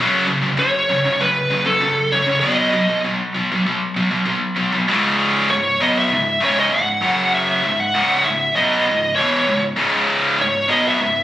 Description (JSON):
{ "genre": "metal", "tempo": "98 BPM", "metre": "4/4", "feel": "straight", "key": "C# minor", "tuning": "A4 = 440 Hz", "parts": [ { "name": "scooped high-gain guitar", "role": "riff", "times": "0.0-11.2 s", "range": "C#2 to B3", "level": "-18 LUFS", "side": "equal", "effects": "distortion" }, { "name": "high-gain lead guitar", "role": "melody", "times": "0.6-11.2 s", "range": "A4 to F#5", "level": "-17 LUFS", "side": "equal", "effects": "distortion" } ], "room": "little or no reverb", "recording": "recorded on a phone in the room, studio reverb, compression", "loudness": "-15 LUFS", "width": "side -13 dB against mid", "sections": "0.0-4.9 A section; 4.9-11.2 B section", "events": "none", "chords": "0.0 F#5; 2.4 B; 4.9 C#5; 7.0 F#5; 7.6 C#m" }